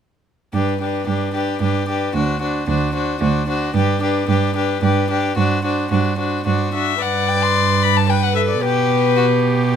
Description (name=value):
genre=quick classical-period movement for string quartet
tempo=111 BPM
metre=3/4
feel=straight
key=G major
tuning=A4 = 441 Hz
part: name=warm violin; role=melody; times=0.5-9.7 s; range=B4 to C6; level=-22 LUFS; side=left 11 dB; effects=none
part: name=warm violin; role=second line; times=0.5-9.8 s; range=F#4 to D5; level=-23 LUFS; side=left 4 dB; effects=none
part: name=warm viola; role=accompaniment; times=0.5-9.8 s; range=D4 to B4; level=-23 LUFS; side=right 2 dB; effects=none
part: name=rich cello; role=bass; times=0.5-9.8 s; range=D2 to B2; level=-20 LUFS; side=right 5 dB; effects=none
room=light reverb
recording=close, detailed microphones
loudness=-16 LUFS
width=side -8 dB against mid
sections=0.5-7.0 A section; 7.0-9.8 B section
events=none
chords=0.5 G; 2.1 D7; 3.8 G; 8.6 G/B